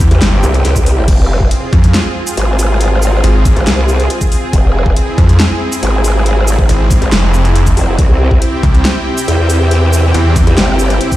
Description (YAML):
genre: heavy wobble dubstep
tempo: 139 BPM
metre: 4/4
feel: half-time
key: F harmonic minor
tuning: A4 = 440 Hz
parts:
  - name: supersaw pad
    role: sustained chords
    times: 0.0-11.2 s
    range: C3 to G5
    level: -18 LUFS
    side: right 1 dB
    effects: sidechain pumping
  - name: snarling distorted saw bass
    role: bass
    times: 0.0-10.5 s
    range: F1 to F2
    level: -11 LUFS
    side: equal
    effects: distortion, overdrive
  - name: dubstep drum kit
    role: drums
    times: 0.0-11.2 s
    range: crash cymbal, hi-hat, shaker, snare drum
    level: -18 LUFS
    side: equal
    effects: none
  - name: electronic kick drum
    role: drums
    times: 0.0-11.2 s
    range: none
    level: -11 LUFS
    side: equal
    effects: overdrive
  - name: growl bass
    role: bass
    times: 0.1-11.0 s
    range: F1 to E2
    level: -11 LUFS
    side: equal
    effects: chorus, overdrive
room: little or no reverb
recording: played on a big sound system in a bare room, stone room reverb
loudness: -9 LUFS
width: side -15 dB against mid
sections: 0.0-11.2 A section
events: none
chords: 0.0 C; 1.1 Fm; 8.0 C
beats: 0.22 0.65 | 1.08 1.51 1.94 2.37 | 2.81 3.24 3.67 4.10 | 4.53 4.96 5.40 5.83 | 6.26 6.69 7.12 7.55 | 7.99 8.42 8.85 9.28 | 9.71 10.14 10.58 11.01